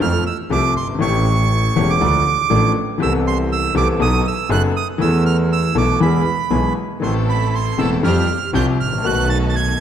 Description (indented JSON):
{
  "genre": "tango",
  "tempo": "120 BPM",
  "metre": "4/4",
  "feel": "rubato",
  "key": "A minor",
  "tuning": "A4 = 441 Hz",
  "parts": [
    { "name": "bandoneon", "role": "melody", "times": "0.0-9.8 s", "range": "B5 to A6", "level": "-21 LUFS", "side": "right 8 dB", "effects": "none" },
    { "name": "clear concert grand piano", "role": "accompaniment", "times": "0.0-9.8 s", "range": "E1 to A4", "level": "-19 LUFS", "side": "left 4 dB", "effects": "none" },
    { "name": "clear double bass", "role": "bass", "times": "0.0-9.8 s", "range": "E1 to F2", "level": "-19 LUFS", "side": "right 2 dB", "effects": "none" },
    { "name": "clear studio string section", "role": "stabs", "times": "7.0-9.8 s", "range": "B3 to A4", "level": "-28 LUFS", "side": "right 2 dB", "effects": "none" }
  ],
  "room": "moderate concert hall reverb, RT60 1.9 s",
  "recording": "none",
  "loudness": "-15 LUFS",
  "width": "side -9 dB against mid",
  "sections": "0.0-9.8 A section",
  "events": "none",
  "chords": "0.0 F; 1.0 A7; 2.0 Dm; 3.0 Amadd9/C; 4.0 B7; 5.0 Esus4; 6.0 E; 7.0 Am; 8.0 Fsus2; 9.0 B7",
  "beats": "0.00 0.50 | 1.00 1.50 2.00 2.50 | 3.00 3.50 4.00 4.50 | 5.00 5.50 6.00 6.51 | 7.02 7.53 8.03 8.54 | 9.04 9.55"
}